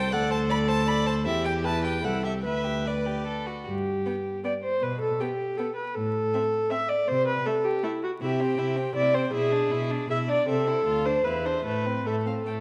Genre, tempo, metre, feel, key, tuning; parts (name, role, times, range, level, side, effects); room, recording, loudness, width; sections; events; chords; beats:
quick classical-period movement for string quartet; 158 BPM; 3/4; rubato; A minor from 8.2 s; A4 = 440 Hz
warm violin; melody; 0.0-12.5 s; C5 to B5; -36 LUFS; equal
rich violin; second line; 0.0-12.6 s; A3 to D5; -36 LUFS; equal
warm viola; accompaniment; 0.0-12.5 s; E4 to E5; -29 LUFS; equal
dark cello; bass; 0.0-12.6 s; C2 to C3; -33 LUFS; equal
moderate scoring stage reverb, RT60 1.9 s; vinyl crackle; -27 LUFS; mono
0.0-3.7 A section; 3.7-12.6 B section
0.1 D5; 1.3 Em; 2.0 C; 2.5 G/D; 3.7 N.C.; 4.8 G/B; 6.0 A5; 7.1 Am/C; 8.2 C; 9.3 E7/B; 10.5 Am/C; 10.9 Dm; 11.3 E5; 11.7 Am
| 0.13 0.51 0.88 | 1.26 1.65 2.04 | 2.45 2.87 3.27 | 3.67 4.06 4.44 | 4.82 5.20 5.58 | 5.96 6.33 6.70 | 7.08 7.46 7.83 | 8.21 8.59 8.96 | 9.34 9.72 10.10 | 10.48 10.87 11.25 | 11.65 12.06 12.46